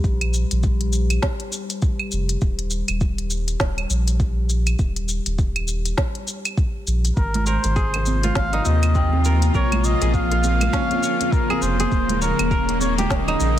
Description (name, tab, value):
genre	organic downtempo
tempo	101 BPM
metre	4/4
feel	swing 59% on 16ths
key	Eb mixolydian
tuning	A4 = 442 Hz
part	warm sub bass	bass	0.0-13.6 s	Eb1 to Eb2	-21 LUFS	equal	sidechain pumping
part	electronic kick drum	drums	0.0-13.2 s	none	-22 LUFS	equal	overdrive, small room reverb
part	organic electronic drum kit	drums	0.0-13.5 s	claves, hi-hat, shaker, snare drum	-27 LUFS	equal	overdrive, small room reverb
part	bronze singing bowl	texture	0.0-13.6 s	G3 to G4	-35 LUFS	left 4 dB	none
part	trumpet with cup mute	melody	7.2-13.6 s	Bb4 to F5	-26 LUFS	equal	ping-pong delay
part	bowed-like drone	sustained chords	7.7-13.6 s	C3 to F4	-24 LUFS	left 1 dB	built-in reverb, sidechain pumping
part	congas and bongos	percussion	7.4-13.4 s	none	-29 LUFS	right 4 dB	none
part	kora	arpeggios	7.5-13.6 s	C4 to Db5	-27 LUFS	right 2 dB	ping-pong delay
room	light reverb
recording	dense, heavily limited modern master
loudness	-18 LUFS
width	side -12 dB against mid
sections	0.0-13.6 A section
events	none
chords	0.0 Bb5; 2.4 Eb; 7.2 Ab69; 9.5 Bbm7; 11.9 Eb7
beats	| 0.04 0.64 1.23 1.82 | 2.42 3.01 3.60 4.20 | 4.79 5.39 5.98 6.58 | 7.17 7.76 8.36 8.95 | 9.55 10.14 10.73 11.33 | 11.92 12.52 13.11